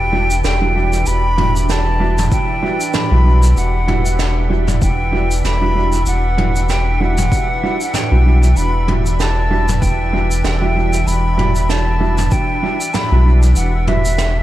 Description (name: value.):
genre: ambient dub.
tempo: 96 BPM.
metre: 4/4.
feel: swing 56% on 16ths.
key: E minor.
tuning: A4 = 441 Hz.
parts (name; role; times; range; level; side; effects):
hollow concert flute; melody; 0.0-14.4 s; E5 to B5; -20 LUFS; equal; dub echo.
soft additive organ-like pad; sustained chords; 0.0-14.4 s; E3 to E5; -25 LUFS; right 1 dB; ensemble chorus, built-in reverb.
warm sub bass; bass; 0.0-14.4 s; E1 to B1; -15 LUFS; equal; none.
mellow electric guitar; stabs; 0.1-14.0 s; G3 to F#4; -23 LUFS; right 3 dB; dub echo.
vintage brush drum kit; drums; 0.3-14.3 s; shaker, snare drum, toms; -23 LUFS; right 2 dB; dub echo.
electronic kick drum; drums; 2.3-12.5 s; none; -20 LUFS; equal; overdrive.
room: little or no reverb.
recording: none.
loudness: -13 LUFS.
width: side -14 dB against mid.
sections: 0.0-14.4 A section.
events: none.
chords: 0.0 Em9.